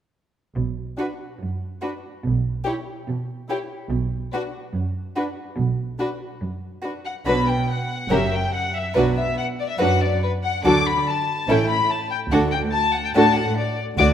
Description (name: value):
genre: quick classical-period movement for string orchestra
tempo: 143 BPM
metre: 4/4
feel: straight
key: B minor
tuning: A4 = 440 Hz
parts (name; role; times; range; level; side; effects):
- warm chamber cello section; bass; 0.6-14.1 s; D2 to D3; -26 LUFS; right 2 dB; none
- warm chamber double bass section; bass; 0.6-14.1 s; F#1 to D2; -27 LUFS; right 3 dB; none
- warm chamber violin section; melody; 1.0-14.1 s; B4 to D6; -23 LUFS; left 5 dB; none
- warm chamber violin section; second line; 1.0-14.1 s; E4 to D5; -24 LUFS; left 1 dB; none
- dark chamber viola section; accompaniment; 1.0-14.1 s; F#3 to E4; -26 LUFS; right 2 dB; none
room: moderate concert hall reverb, RT60 1.9 s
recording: none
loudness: -20 LUFS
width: side -9 dB against mid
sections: 0.6-7.3 A section; 7.3-14.1 B section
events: none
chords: 0.6 B5; 2.2 N.C.; 3.9 B5; 7.3 Bm; 8.1 F#; 9.0 Bm; 10.6 D; 11.5 A; 12.3 D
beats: | 0.55 0.97 1.40 1.82 | 2.24 2.66 3.08 3.49 | 3.91 4.32 4.74 5.16 | 5.57 5.99 6.41 6.83 | 7.27 7.69 8.11 8.53 | 8.95 9.37 9.79 10.22 | 10.64 11.06 11.48 11.90 | 12.31 12.73 13.14 13.56 | 13.98